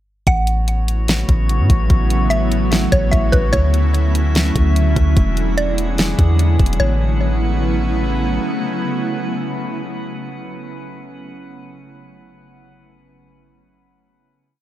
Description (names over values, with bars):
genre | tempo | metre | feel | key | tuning
hip hop, atmospheric cloud-rap | 147 BPM | 4/4 | half-time | A major | A4 = 439 Hz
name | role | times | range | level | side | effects
mallet-like synth pluck | melody | 0.3-8.0 s | B4 to F#5 | -22 LUFS | right 1 dB | chorus, tape echo
ethereal airy pad | sustained chords | 0.9-10.8 s | C#3 to E4 | -22 LUFS | right 1 dB | ensemble chorus, built-in reverb, sidechain pumping
soft 808-style bass | bass | 0.3-8.4 s | E1 to A2 | -17 LUFS | equal | none
smooth R&B drum kit | drums | 0.3-6.8 s | hi-hat, kick drum, snare drum | -17 LUFS | equal | none
drifting glass-harmonics texture | texture | 0.7-10.8 s | B3 to F#5 | -28 LUFS | left 1 dB | chorus, built-in reverb
room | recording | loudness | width
light reverb, digital ambience | none | -14 LUFS | side -13 dB against mid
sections
0.3-6.8 verse; 6.8-10.1 final chord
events
none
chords
0.3 A69; 3.5 Dmaj9; 5.2 E9; 6.8 A69